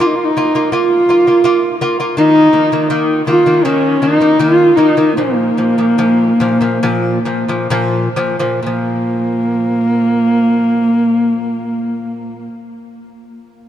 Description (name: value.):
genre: mongolian traditional, Mongolian folk.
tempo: 62-83 BPM.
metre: 4/4.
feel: straight.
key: unclear.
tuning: A4 = 440 Hz.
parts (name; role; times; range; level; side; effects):
dark horsehead fiddle; melody; 0.0-12.5 s; Bb3 to F4; -12 LUFS; equal; none.
lute; arpeggios; 0.0-12.5 s; Bb2 to F4; -17 LUFS; left 1 dB; none.
room: wet huge ambient reverb, RT60 7.1 s.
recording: dark, warm production.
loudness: -11 LUFS.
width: side -10 dB against mid.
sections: 0.0-8.6 A section; 8.6-12.5 B section.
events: slowing down 2.2-8.6.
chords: 0.0 Bb5; 2.2 Eb5; 5.2 Bb5.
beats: 0.01 0.74 1.47 | 2.19 2.92 3.65 4.41 | 5.18 5.99 6.83 7.71 | 8.64 9.60 10.56 11.52.